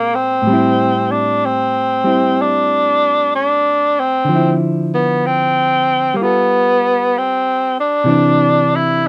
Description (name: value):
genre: jazz ballad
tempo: 63 BPM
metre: 4/4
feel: swing 66% on 8ths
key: unclear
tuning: A4 = 440 Hz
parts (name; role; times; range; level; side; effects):
- breathy tenor saxophone; melody; 0.0-9.1 s; Bb3 to E4; -16 LUFS; equal; none
- hollow-body jazz guitar; accompaniment; 0.0-9.1 s; A2 to A4; -20 LUFS; equal; none
room: light reverb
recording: close, detailed microphones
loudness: -15 LUFS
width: mono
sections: 0.0-9.1 A section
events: none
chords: 0.4 Am7; 4.3 Dm9; 6.2 G9; 8.1 Cadd9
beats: | 0.44 1.40 2.36 3.32 | 4.27 5.22 6.17 7.12 | 8.07 9.01